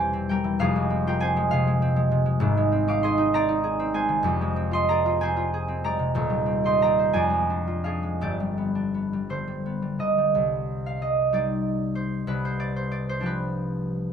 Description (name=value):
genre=classical, solo harp piece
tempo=55-67 BPM (dotted quarters)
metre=6/8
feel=rubato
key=C minor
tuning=A4 = 440 Hz
part: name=concert harp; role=solo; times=0.0-14.1 s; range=Eb1 to D6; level=-22 LUFS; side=right 1 dB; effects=none
room=little or no reverb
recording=close, detailed microphones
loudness=-22 LUFS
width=side -7 dB against mid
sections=0.0-10.3 A section; 10.3-14.1 B section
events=none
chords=0.0 C/E; 0.6 Fm; 2.4 Ab; 4.3 Fm; 6.2 Cm/Eb; 7.1 Ddim/F; 8.2 G; 10.3 Cm; 12.3 G7/C